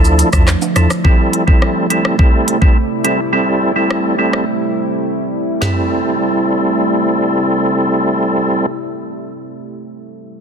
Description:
dancehall; 105 BPM; 4/4; straight; A minor; A4 = 441 Hz
percussive tonewheel organ; accompaniment; 0.0-8.7 s; F3 to A4; -15 LUFS; right 1 dB; overdrive, chorus vibrato, stopped rotary speaker
deep dark ambient pad; sustained chords; 0.0-8.7 s; C3 to E4; -19 LUFS; right 1 dB; chorus, built-in reverb, sidechain pumping
punchy sub bass; bass; 0.0-0.9 s; D2 to E2; -13 LUFS; equal
island pop drum kit; drums; 0.0-5.8 s; handclaps, hi-hat, kick drum, rim click, shaker, snare drum, toms; -13 LUFS; equal; soft clipping on snare
maracas and timbales; percussion; 0.0-1.0 s; -26 LUFS; right 9 dB
light reverb; dense, heavily limited modern master; -12 LUFS; side -7 dB against mid
0.0-1.0 A section; 1.0-5.6 B section; 5.6-7.9 C section
break 4.5-5.6
0.0 Dmadd9; 1.0 Am7
0.47 | 1.04 1.62 2.19 2.76 | 3.33 3.90 4.47 5.04 | 5.62 6.19 6.76 7.33

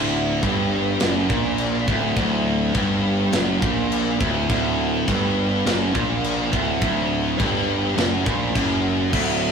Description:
heavy metal; 103 BPM; 4/4; straight; A4 = 440 Hz
high-gain distorted guitar; riff; 0.0-9.5 s; D2 to Bb2; -26 LUFS; right 6 dB; distortion
tight distorted guitar; riff; 0.0-9.5 s; D2 to Bb2; -25 LUFS; left 5 dB; distortion
tight distorted guitar; riff; 0.0-9.5 s; D2 to Bb2; -27 LUFS; right 1 dB; distortion
fuzz picked electric bass; bass; 0.0-9.5 s; D1 to Bb1; -25 LUFS; equal; overdrive
tight metal drum kit; drums; 0.4-9.3 s; china cymbal, crash cymbal, kick drum, snare drum; -25 LUFS; equal
dark chamber string section; sustained chords; 9.1-9.5 s; D3 to F#4; -31 LUFS; equal
moderate stone room reverb, RT60 1.2 s; rough rehearsal-room recording, warm saturation; -18 LUFS; side -6 dB against mid
0.0-9.5 A section
0.0 D
0.43 1.01 1.59 | 2.17 2.75 3.33 3.91 | 4.49 5.07 5.65 6.23 | 6.81 7.39 7.97 8.55 | 9.13

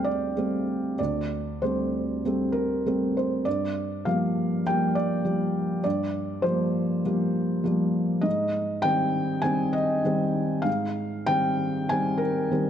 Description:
neoclassical minimalist piano; 99 BPM; 4/4; rubato; G minor; A4 = 441 Hz
felt-muted upright piano; solo; 0.0-12.7 s; D2 to Ab5; -23 LUFS; equal
light reverb; dark, warm production; -23 LUFS; side -9 dB against mid
0.0-12.7 A section
0.0 D7sus4; 3.5 Gm7; 8.3 Abmaj7
0.36 | 0.99 1.62 2.24 2.85 | 3.46 4.05 4.66 5.25 | 5.85 6.45 7.05 7.65 | 8.25 8.85 9.45 10.05 | 10.67 11.28 11.90 12.52

